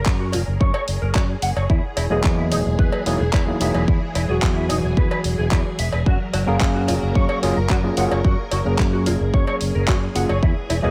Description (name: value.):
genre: nu-disco, nu disco.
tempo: 110 BPM.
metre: 4/4.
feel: straight.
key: F# major.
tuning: A4 = 440 Hz.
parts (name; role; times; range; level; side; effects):
string machine, full ensemble; sustained chords; 0.0-10.9 s; E3 to A#4; -33 LUFS; equal; ensemble chorus, sidechain pumping.
modern bright fingered electric bass; bass; 0.1-10.9 s; E1 to F#2; -25 LUFS; equal; none.
electronic kick drum; drums; 0.1-10.5 s; none; -22 LUFS; equal; none.
pop drum kit; drums; 0.1-10.8 s; handclaps, hi-hat; -30 LUFS; equal; none.
mellow electric guitar; riff; 0.2-10.9 s; D#4 to F#5; -30 LUFS; equal; ensemble chorus, digital delay.
cowbell; percussion; 0.3-10.8 s; none; -34 LUFS; equal; none.
overdriven tine electric piano; accompaniment; 2.1-10.9 s; E3 to E#5; -26 LUFS; equal; digital delay.
room: little or no reverb.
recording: none.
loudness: -20 LUFS.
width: mono.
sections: 0.0-10.9 A section.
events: none.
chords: 0.0 F#add9; 1.7 Emaj9#11; 6.1 F#maj9.